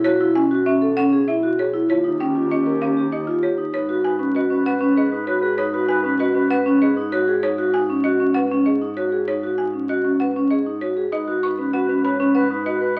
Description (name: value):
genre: classical, minimalist pattern music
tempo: 195 BPM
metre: 6/4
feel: straight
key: G# minor from 3.7 s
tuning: A4 = 439 Hz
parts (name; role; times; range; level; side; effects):
- folk marimba with hard mallets; melody; 0.0-13.0 s; C#5 to C#6; -30 LUFS; equal; none
- vibraphone with medium mallets; arpeggios; 0.0-13.0 s; C#4 to C#5; -21 LUFS; equal; none
- rich double bass; bass; 0.0-13.0 s; B1 to G#2; -38 LUFS; equal; none
- mellow clarinet; second line; 1.9-7.2, 11.1-13.0 s; G4 to B4; -30 LUFS; equal; none
room: moderate large studio reverb, RT60 1.2 s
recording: very old 78 rpm record, vinyl crackle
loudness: -20 LUFS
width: mono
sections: 0.0-3.7 A section; 3.7-13.0 B section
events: none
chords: 0.0 F#sus2/B; 1.9 D#7; 3.7 G#m7